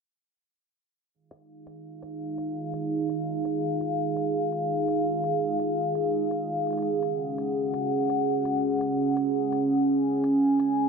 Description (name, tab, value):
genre	half-time drum and bass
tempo	168 BPM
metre	4/4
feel	swing 60% on 16ths, half-time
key	F phrygian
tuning	A4 = 440 Hz
part	dark analog pad	sustained chords	1.9-10.9 s	Db4 to Ab5	-24 LUFS	right 1 dB	chorus, phaser
part	electronic hi-hat	drums	1.3-10.7 s	none	-54 LUFS	left 1 dB	overdrive
room	moderate digital room reverb, RT60 1.1 s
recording	heavily compressed radio sound, multiband compression, low-pass filter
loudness	-24 LUFS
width	side -5 dB against mid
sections	1.1-10.9 A section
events	filter sweep 1.1-10.9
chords	1.1 Fm7; 6.8 Gbsus2